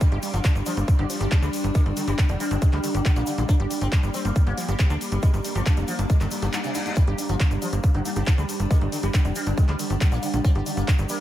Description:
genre	psychedelic trance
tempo	138 BPM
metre	4/4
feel	straight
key	G minor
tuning	A4 = 441 Hz
part	sitar	melody	0.0-11.1 s	G2 to D4	-32 LUFS	equal	phaser, sidechain pumping, diffuse ambient delay
part	evolving wavetable pad	sustained chords	0.0-11.2 s	G3 to G4	-31 LUFS	left 1 dB	chorus, built-in reverb, sidechain pumping
part	woody wave-folded pluck	riff	0.0-11.1 s	F3 to G4	-35 LUFS	right 1 dB	chorus, auto-pan, cassette tape, sidechain pumping, analog delay
part	big-room dance drum kit	drums	0.0-11.2 s	handclaps, hi-hat	-33 LUFS	left 1 dB	none
part	electronic kick drum	drums	0.0-11.0 s	none	-19 LUFS	equal	none
part	egg shaker	percussion	0.0-11.2 s	none	-39 LUFS	left 3 dB	none
part	airy breathy pad	texture	0.0-11.2 s	D4 to C6	-37 LUFS	right 1 dB	chorus, sidechain pumping
part	tight sequencer bass	bass	0.1-11.1 s	F1 to D2	-25 LUFS	equal	none
part	vowel-sweep wobble bass	second line	0.9-2.6, 7.8-8.5 s	none	barely audible	none	none
part	reverse cymbal	sound effects	6.3-7.0 s	none	-38 LUFS	left 3 dB	none
room	light reverb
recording	none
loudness	-20 LUFS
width	side -13 dB against mid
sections	0.0-11.2 A section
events	reverse cymbal 6.3-7.0; break 6.5-7.0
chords	0.0 G5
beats	| 0.01 0.45 0.88 1.31 | 1.75 2.18 2.62 3.05 | 3.49 3.92 4.36 4.79 | 5.23 5.66 6.10 6.53 | 6.97 7.40 7.84 8.27 | 8.71 9.14 9.58 10.01 | 10.45 10.88

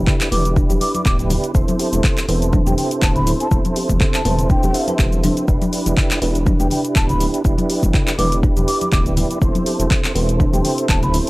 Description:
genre	afro house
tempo	122 BPM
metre	4/4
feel	swing 55% on 16ths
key	E minor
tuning	A4 = 440 Hz
part	mellow tonewheel organ	stabs	0.0-11.3 s	C4 to C5	-24 LUFS	right 2 dB	chorus vibrato, slow rotary speaker, sidechain pumping
part	dark detuned saw bass	bass	0.0-11.2 s	D1 to E1	-20 LUFS	equal	sidechain pumping
part	kalimba	arpeggios	0.1-11.2 s	B3 to E5	-24 LUFS	equal	sidechain pumping
part	deep house drum kit	drums	0.1-11.3 s	handclaps, hi-hat, shaker, toms	-24 LUFS	left 1 dB	none
part	electronic kick drum	drums	0.1-11.0 s	none	-17 LUFS	equal	none
part	congas	percussion	0.1-11.2 s	none	-26 LUFS	left 2 dB	none
part	breathy mellow bansuri	melody	0.3-11.3 s	G5 to D6	-25 LUFS	left 1 dB	analog delay
room	small room ambience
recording	dry, gritty hardware recording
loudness	-15 LUFS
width	side -20 dB against mid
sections	0.0-11.3 A section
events	none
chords	0.0 Em7; 1.5 Am; 5.5 Em7; 9.4 Am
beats	0.07 0.56 1.06 | 1.55 2.04 2.53 3.02 | 3.52 4.01 4.50 4.99 | 5.48 5.97 6.47 6.96 | 7.45 7.94 8.43 8.93 | 9.42 9.91 10.40 10.89

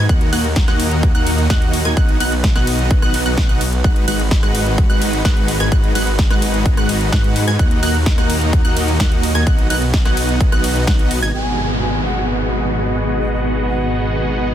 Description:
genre	EDM, festival progressive house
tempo	128 BPM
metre	4/4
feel	straight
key	G# minor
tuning	A4 = 440 Hz
part	lush unison pad	sustained chords	0.0-14.5 s	D#3 to B4	-26 LUFS	equal	chorus, sidechain pumping
part	wide unison pluck	arpeggios	0.0-11.3 s	F#6 to G#6	-26 LUFS	right 1 dB	sidechain pumping, dub echo
part	dense compressed supersaw	riff	0.0-14.5 s	G#3 to G#5	-21 LUFS	equal	sidechain pumping, low-pass filter, dub echo
part	detuned saw bass	bass	0.0-14.5 s	G#1 to G#2	-20 LUFS	equal	sidechain pumping
part	big-room dance drum kit	drums	0.1-11.3 s	hi-hat, ride cymbal, rim click, snare drum	-25 LUFS	equal	none
part	electronic kick drum	drums	0.1-11.0 s	none	-15 LUFS	equal	overdrive
part	wooden flute	melody	11.3-14.0 s	D#5 to G#5	-28 LUFS	equal	dub echo
part	downlifter	sound effects	11.3-14.5 s	none	-25 LUFS	equal	none
room	little or no reverb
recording	dense, heavily limited modern master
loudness	-14 LUFS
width	side -11 dB against mid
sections	0.0-11.3 A section; 11.3-14.5 B section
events	drop 0.0-11.3; filter sweep on supersaw synth 11.3-14.5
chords	0.1 D#m; 2.0 B; 3.8 G#m7; 7.6 D#m; 9.5 G#m7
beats	| 0.09 0.56 1.03 1.50 | 1.97 2.44 2.90 3.37 | 3.84 4.31 4.78 5.25 | 5.72 6.19 6.66 7.12 | 7.59 8.06 8.53 9.00 | 9.47 9.94 10.40 10.87 | 11.34 11.81 12.28 12.75 | 13.22 13.69 14.15

